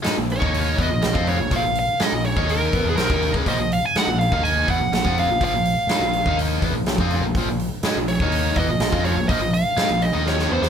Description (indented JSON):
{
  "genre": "hard rock",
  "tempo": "123 BPM",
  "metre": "4/4",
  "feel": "straight",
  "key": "Bb minor",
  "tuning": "A4 = 440 Hz",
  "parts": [
    { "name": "biting overdriven guitar", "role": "riff", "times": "0.0-10.7 s", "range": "Bb2 to F4", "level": "-23 LUFS", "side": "left 1 dB", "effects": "none" },
    { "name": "huge arena drum kit", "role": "drums", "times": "0.0-10.7 s", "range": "hi-hat, kick drum, snare drum", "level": "-24 LUFS", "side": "equal", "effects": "none" },
    { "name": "growling fingered electric bass", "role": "bass", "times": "0.1-10.7 s", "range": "Bb1 to Ab2", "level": "-26 LUFS", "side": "equal", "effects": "overdrive" },
    { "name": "high-gain lead guitar", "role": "melody", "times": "0.3-10.7 s", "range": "Ab4 to Ab5", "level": "-22 LUFS", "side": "right 1 dB", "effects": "distortion" }
  ],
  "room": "moderate studio reverb, RT60 0.6 s",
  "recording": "band playing live in one room",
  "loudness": "-18 LUFS",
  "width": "side -8 dB against mid",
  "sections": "0.0-10.7 A section",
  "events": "drum fill 10.3-10.7",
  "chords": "0.0 Bb5",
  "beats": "0.06 0.55 1.03 | 1.52 2.01 2.49 2.98 | 3.47 3.95 4.44 4.92 | 5.41 5.90 6.38 6.87 | 7.36 7.84 8.33 8.81 | 9.30 9.79 10.27"
}